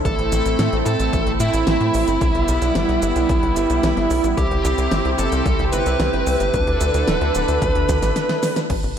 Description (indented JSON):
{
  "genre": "synthwave",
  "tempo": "111 BPM",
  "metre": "4/4",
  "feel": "straight",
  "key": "unclear",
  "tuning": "A4 = 440 Hz",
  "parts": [
    { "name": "brassy analog pad", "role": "sustained chords", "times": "0.0-8.7 s", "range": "C3 to A4", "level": "-23 LUFS", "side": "right 2 dB", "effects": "chorus, sidechain pumping" },
    { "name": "smooth overdriven lead guitar", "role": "melody", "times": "0.1-8.6 s", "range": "E4 to B4", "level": "-22 LUFS", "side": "right 1 dB", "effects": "ping-pong delay" },
    { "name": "tight sequencer bass", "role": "bass", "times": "0.1-8.9 s", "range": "D1 to A2", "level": "-22 LUFS", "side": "equal", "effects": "none" },
    { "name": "electronic kick drum", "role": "drums", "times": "0.1-8.8 s", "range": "none", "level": "-24 LUFS", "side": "equal", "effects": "overdrive" },
    { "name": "pop drum kit", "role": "drums", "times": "0.1-8.9 s", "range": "cabasa, crash cymbal, hi-hat, snare drum", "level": "-27 LUFS", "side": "equal", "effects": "none" }
  ],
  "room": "wet lush hall reverb, RT60 1.9 s",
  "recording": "dreamy mix soaked in reverb",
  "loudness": "-16 LUFS",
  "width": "side -8 dB against mid",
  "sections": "0.0-8.7 A section",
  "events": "drum fill 7.9-8.7; break 8.2-8.7",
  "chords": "0.1 Am; 2.2 Em; 4.4 C; 6.5 Dsus2"
}